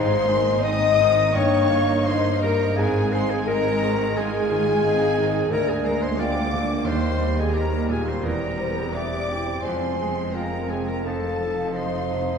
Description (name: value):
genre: classical, romantic movement for piano and orchestra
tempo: 86 BPM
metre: 4/4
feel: rubato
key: Eb major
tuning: A4 = 441 Hz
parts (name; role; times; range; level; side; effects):
- bright concert grand piano; melody; 0.0-12.4 s; D2 to G4; -27 LUFS; left 1 dB; none
- warm studio violin section; melody; 0.0-12.4 s; Ab5 to Eb6; -36 LUFS; left 2 dB; none
- bright clarinet; second line; 0.0-12.4 s; Ab4 to Eb5; -31 LUFS; left 1 dB; none
- mellow hollow concert flute; second line; 0.0-12.4 s; C5 to Ab5; -34 LUFS; left 1 dB; none
- warm studio violin section; second line; 0.0-12.4 s; Ab5 to Eb6; -34 LUFS; left 2 dB; none
- rich studio viola section; accompaniment; 0.0-12.4 s; F3 to F4; -29 LUFS; right 2 dB; none
- warm French horn section; sustained chords; 0.0-12.4 s; Ab4 to Eb5; -24 LUFS; left 3 dB; none
- clear studio double bass section; bass; 0.0-12.4 s; E1 to Eb2; -30 LUFS; right 2 dB; none
- rich studio cello section; bass; 0.0-12.4 s; D2 to Ab2; -31 LUFS; right 2 dB; none
room: wet scoring stage reverb, RT60 1.9 s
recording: heard from further back in the room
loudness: -20 LUFS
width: side -6 dB against mid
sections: 0.0-12.4 A section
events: none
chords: 0.0 Ab; 1.3 Eb7/G; 2.8 Ab; 5.5 Bb7/D; 6.9 Eb; 8.2 C7/E; 9.6 Fm; 11.1 F7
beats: 0.64 1.35 2.06 | 2.77 3.48 4.17 4.85 | 5.52 6.18 6.86 7.55 | 8.25 8.95 9.64 10.35 | 11.06 11.77